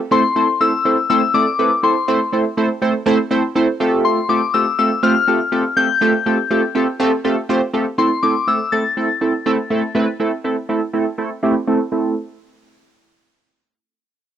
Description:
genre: pop.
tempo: 122 BPM.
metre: 4/4.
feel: straight.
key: A minor.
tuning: A4 = 440 Hz.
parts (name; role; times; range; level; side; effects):
soft synth bell; melody; 0.1-11.4 s; C6 to A6; -17 LUFS; left 5 dB; chorus, low-pass filter, cassette tape, tape echo.
funky polysynth comp; accompaniment; 0.1-12.1 s; A3 to D5; -17 LUFS; right 2 dB; chorus, low-pass filter, cassette tape.
room: moderate booth ambience, RT60 0.3 s.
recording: home recording on cassette.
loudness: -15 LUFS.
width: side -10 dB against mid.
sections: 0.0-8.0 A section; 8.0-11.9 B section; 11.9-13.9 C section.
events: filter sweep 8.0-11.9.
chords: 0.1 Am; 3.8 Fadd9/A; 8.0 Am.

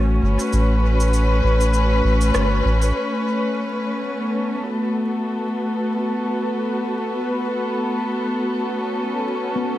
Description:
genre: ambient dub.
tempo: 99 BPM.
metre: 4/4.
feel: swing 56% on 16ths.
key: unclear.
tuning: A4 = 441 Hz.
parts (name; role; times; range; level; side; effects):
dark chamber string section; sustained chords; 0.0-9.8 s; A3 to B4; -21 LUFS; left 1 dB; none.
handpan; arpeggios; 0.0-0.8, 9.6-9.8 s; F#3 to B3; -31 LUFS; left 4 dB; none.
soft dub sub bass; bass; 0.0-2.9 s; G1 to A1; -18 LUFS; equal; none.
electronic cabasa and rim click; drums; 0.4-2.9 s; none; -30 LUFS; right 1 dB; low-pass filter on perc, low-pass filter on snare, low-pass filter on room, dub echo.
bubbling stepped-filter texture; texture; 5.2-9.8 s; B4; -31 LUFS; equal; chorus, built-in reverb.
room: moderate plate reverb, RT60 2.0 s.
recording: echo-heavy mix, vinyl crackle.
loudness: -18 LUFS.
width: side -14 dB against mid.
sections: 0.0-2.9 A section; 2.9-9.8 B section.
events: band accent 2.3-2.6.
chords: 0.0 A13; 2.9 F#madd11/A.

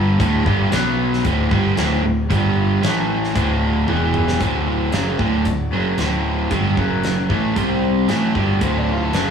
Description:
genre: classic rock.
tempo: 114 BPM.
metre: 4/4.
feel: straight.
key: D major.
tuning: A4 = 439 Hz.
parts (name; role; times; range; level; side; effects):
biting overdriven guitar; riff; 0.0-9.3 s; D2 to C4; -21 LUFS; right 9 dB; none.
overdriven electric guitar; riff; 0.0-9.3 s; D2 to C4; -21 LUFS; left 5 dB; spring reverb.
overdriven picked electric bass; bass; 0.0-9.3 s; D1 to C2; -23 LUFS; equal; none.
big rock drum kit; drums; 0.2-9.3 s; hi-hat, kick drum, snare drum, toms; -24 LUFS; equal; none.
picked steel-string acoustic guitar; accompaniment; 4.4-9.3 s; C3 to D5; -30 LUFS; left 2 dB; none.
octave-fuzz lead guitar; second line; 8.6-9.3 s; C4 to A4; -26 LUFS; left 4 dB; distortion.
room: moderate studio reverb, RT60 0.7 s.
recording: small room ambience.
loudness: -16 LUFS.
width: side -7 dB against mid.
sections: 0.0-4.4 A section; 4.4-9.3 B section.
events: drum fill 3.9-4.4.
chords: 0.2 D5; 0.7 B5; 1.2 D5; 2.3 G5; 2.8 A5; 3.3 D5; 3.9 E5; 4.4 D; 6.8 F#5; 7.3 D; 7.6 C5; 8.1 D.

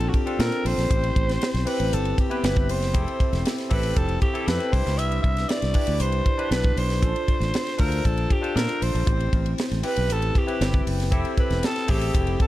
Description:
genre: polished 1980s jazz-funk pop.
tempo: 118 BPM.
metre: 4/4.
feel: straight.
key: unclear.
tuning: A4 = 440 Hz.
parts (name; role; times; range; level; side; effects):
growling alto saxophone; melody; 0.0-12.5 s; F#4 to E5; -28 LUFS; equal; tape echo.
barky tine electric piano; accompaniment; 0.0-12.5 s; B3 to C5; -28 LUFS; left 2 dB; overdrive, lush chorus.
fingered electric bass; bass; 0.0-12.3 s; E1 to Bb2; -25 LUFS; equal; none.
tight funk drum kit; drums; 0.0-12.5 s; hi-hat, kick drum, ride cymbal, snare drum; -25 LUFS; equal; none.
room: small room ambience.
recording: dark, warm production.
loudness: -21 LUFS.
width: side -15 dB against mid.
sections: 0.0-12.5 A section.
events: none.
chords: 0.0 Bbmaj7; 0.9 Am7; 2.9 Fmaj7; 4.7 Cmaj9; 7.0 Bbmaj7; 9.1 Am7; 11.1 Fmaj7.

